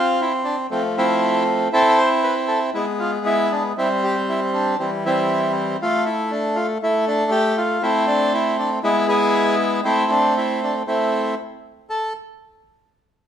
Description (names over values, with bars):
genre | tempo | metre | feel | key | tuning
tango | 118 BPM | 4/4 | rubato | A minor | A4 = 440 Hz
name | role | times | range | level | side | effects
bandoneon | solo | 0.0-12.1 s | E3 to C5 | -17 LUFS | equal | none
room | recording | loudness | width
moderate large studio reverb, RT60 1.3 s | band playing live in one room | -17 LUFS | side -9 dB against mid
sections
0.0-11.9 A section; 11.9-13.3 B section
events
none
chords
0.0 F; 1.7 C6; 2.7 G#dim7; 3.8 C; 5.8 N.C.; 7.8 Am; 8.8 E; 9.8 Am; 11.4 N.C.